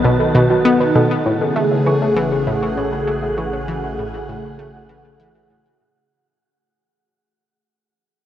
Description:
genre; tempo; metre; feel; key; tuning
ambient, sequencer-driven space music; 99 BPM; 4/4; straight; A lydian; A4 = 440 Hz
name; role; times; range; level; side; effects
phased analog pad; sustained chords; 0.0-6.1 s; C#3 to G#4; -19 LUFS; equal; phaser, chorus
soft round pluck; arpeggios; 0.0-3.6 s; F#4 to C#6; -23 LUFS; right 1 dB; chorus, auto-pan, ping-pong delay
analog pluck; riff; 0.0-6.1 s; A2 to B3; -18 LUFS; left 1 dB; chorus, ping-pong delay
round analog bass; bass; 0.0-6.1 s; A1 to B1; -34 LUFS; equal; none
wind-like tuned noise texture; texture; 0.0-6.1 s; F#4 to A5; -29 LUFS; right 2 dB; built-in reverb
room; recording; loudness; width
wet huge ambient reverb, RT60 8.1 s; worn, warbling old tape, cassette tape, warbly pitch drift; -15 LUFS; side -11 dB against mid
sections
0.0-1.3 A section; 1.3-6.1 B section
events
fade-out on synth arpeggio sound 1.3-6.1; fade-out on analog synth bass 1.3-6.1; fade-out 1.3-6.1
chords
0.0 B7; 1.3 Amaj7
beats
0.04 0.65 | 1.26 1.86 2.47 3.08 | 3.68 4.29 4.89 5.50

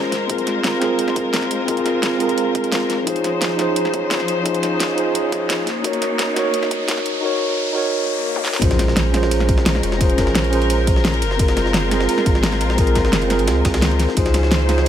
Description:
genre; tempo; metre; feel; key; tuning
liquid drum and bass; 173 BPM; 4/4; straight; Bb minor; A4 = 438 Hz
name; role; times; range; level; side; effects
mellow tine electric piano; accompaniment; 0.0-14.9 s; C4 to C#5; -20 LUFS; moving between left 5 dB and right 5 dB; auto-pan, low-pass filter, digital delay
rich studio string section; sustained chords; 0.0-14.9 s; F3 to C5; -24 LUFS; left 2 dB; vintage 12-bit sampler grit
saturated sub bass; bass; 0.0-14.9 s; F1 to Db2; -20 LUFS; equal; high-pass filter
pop drum kit; drums; 0.1-14.9 s; hi-hat, snare drum, toms; -23 LUFS; equal; high-pass filter on hats, high-pass filter on snare, high-pass filter on toms
electronic kick drum; drums; 0.3-14.2 s; none; -20 LUFS; equal; high-pass filter on kick
riser, swell and impact; sound effects; 5.1-10.0 s; none; -28 LUFS; equal; none
jungle sampler-style drum kit; drums; 8.6-14.9 s; ride cymbal, snare drum; -28 LUFS; right 1 dB; high-pass filter on cymbals, high-pass filter on snare
room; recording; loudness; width
light reverb; high-pass filter; -16 LUFS; side -10 dB against mid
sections
0.0-8.6 A section; 8.6-14.9 B section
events
build-up 0.0-8.6; filter sweep on tine electric piano 0.0-8.6; riser 5.1-8.6; swell 7.9-8.6; drum fill 8.4; drop 8.6-14.9; impact 8.6-10.0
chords
0.1 Gbmaj9#11; 3.1 Dbmaj9; 5.7 Bmaj9; 8.6 Bbm9; 11.2 Gbmaj9#11; 14.2 Dbmaj9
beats
| 0.30 0.64 0.99 1.34 | 1.68 2.03 2.38 2.72 | 3.07 3.42 3.76 4.11 | 4.46 4.80 5.15 5.50 | 5.84 6.19 6.54 6.88 | 7.23 7.58 7.93 8.27 | 8.62 8.97 9.31 9.66 | 10.01 10.35 10.70 11.05 | 11.39 11.74 12.09 12.44 | 12.78 13.13 13.47 13.82 | 14.17 14.52 14.86

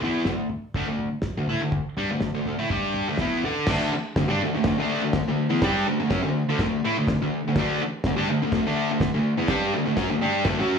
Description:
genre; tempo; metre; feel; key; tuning
garage rock duo or trio; 124 BPM; 4/4; straight; D major; A4 = 443 Hz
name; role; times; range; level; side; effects
fuzz guitar; riff; 0.0-10.8 s; D3 to D5; -22 LUFS; equal; distortion
cloth-damped thuddy drum kit; drums; 0.0-10.6 s; crash cymbal, kick drum, snare drum, toms; -29 LUFS; equal; none
room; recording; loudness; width
wet club reverb, RT60 0.6 s; studio reverb; -22 LUFS; side -6 dB against mid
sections
0.0-3.7 A section; 3.7-10.8 B section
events
none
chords
0.0 D5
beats
0.27 0.76 1.25 | 1.74 2.23 2.71 3.20 | 3.69 4.17 4.66 5.14 | 5.63 6.11 6.60 7.08 | 7.57 8.05 8.53 9.02 | 9.50 9.99 10.47

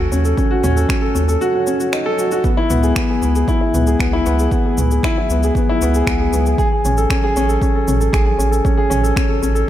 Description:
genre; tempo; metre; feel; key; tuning
piano and strings electronica; 116 BPM; 4/4; straight; C# minor; A4 = 440 Hz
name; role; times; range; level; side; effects
dark baby grand piano; riff; 0.0-9.7 s; B3 to A4; -17 LUFS; left 1 dB; ping-pong delay
round analog bass; bass; 0.0-9.6 s; A1 to D#2; -17 LUFS; right 1 dB; sidechain pumping
deep house drum kit; drums; 0.1-9.7 s; finger snaps, shaker, toms; -25 LUFS; right 1 dB; small room reverb
electronic kick drum; drums; 0.4-9.3 s; none; -19 LUFS; right 1 dB; small room reverb
swell; sound effects; 1.6-2.4 s; none; -30 LUFS; right 1 dB; none
room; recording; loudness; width
light reverb; none; -14 LUFS; side -12 dB against mid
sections
0.0-9.7 A section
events
swell 1.6-2.4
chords
0.0 D#m7b5; 2.4 C#m7; 6.6 Amaj7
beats
| 0.38 0.90 1.41 1.93 | 2.45 2.96 3.48 4.00 | 4.51 5.03 5.55 6.07 | 6.58 7.10 7.62 8.14 | 8.65 9.17 9.69

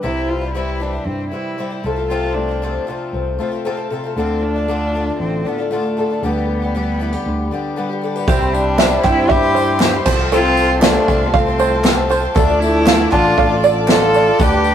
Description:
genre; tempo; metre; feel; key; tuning
indie folk with a building arrangement; 117 BPM; 4/4; straight; C major; A4 = 439 Hz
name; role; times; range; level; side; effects
warm cello; melody; 0.0-14.7 s; A3 to A4; -20 LUFS; right 1 dB; none
fingerpicked steel-string acoustic guitar; accompaniment; 0.0-10.3 s; A2 to B4; -24 LUFS; left 2 dB; none
picked twelve-string acoustic guitar; accompaniment; 0.0-14.7 s; C3 to G4; -23 LUFS; left 4 dB; none
fingered electric bass; bass; 0.0-14.7 s; A1 to G2; -22 LUFS; equal; none
bright trombone; second line; 8.3-14.7 s; G3 to F4; -20 LUFS; left 2 dB; none
clear upright piano; accompaniment; 8.3-14.7 s; C2 to E5; -30 LUFS; right 2 dB; none
rich symphonic string section; sustained chords; 8.3-14.7 s; G4 to D6; -24 LUFS; left 2 dB; none
open-back banjo; arpeggios; 8.3-14.7 s; G4 to A5; -19 LUFS; right 5 dB; none
unplugged drum kit; drums; 8.3-14.5 s; crash cymbal, kick drum, snare drum; -16 LUFS; equal; none
tambourine; percussion; 8.3-14.7 s; none; -38 LUFS; left 5 dB; none
group handclap; percussion; 8.8-14.0 s; none; -30 LUFS; right 2 dB; none
room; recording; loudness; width
light reverb; rough rehearsal-room recording; -14 LUFS; side -9 dB against mid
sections
0.0-8.3 A section; 8.3-14.7 B section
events
none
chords
0.0 C; 1.8 F/C; 4.2 Dm; 6.2 G/D; 8.3 C; 10.1 F/C; 12.4 Dm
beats
| 0.03 0.55 1.07 1.58 | 2.10 2.62 3.13 3.65 | 4.16 4.68 5.19 5.71 | 6.22 6.74 7.25 7.76 | 8.27 8.78 9.29 9.80 | 10.31 10.82 11.33 11.84 | 12.35 12.87 13.38 13.89 | 14.40

